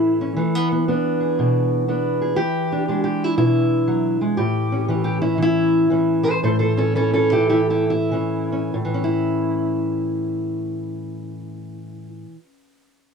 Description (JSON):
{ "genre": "acoustic country blues, solo or duo", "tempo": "94-120 BPM", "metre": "4/4", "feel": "swing 65% on 8ths", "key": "A major", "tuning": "A4 = 439 Hz", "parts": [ { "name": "fingerpicked steel-string acoustic guitar", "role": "solo", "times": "0.0-12.4 s", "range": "A2 to C5", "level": "-18 LUFS", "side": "equal", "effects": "none" } ], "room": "wet booth ambience, RT60 0.2 s", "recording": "dark, warm production", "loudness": "-18 LUFS", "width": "side -6 dB against mid", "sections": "0.0-8.7 A section; 8.7-13.1 B section", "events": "slowing down 4.4-8.7", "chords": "0.4 E7; 4.4 A" }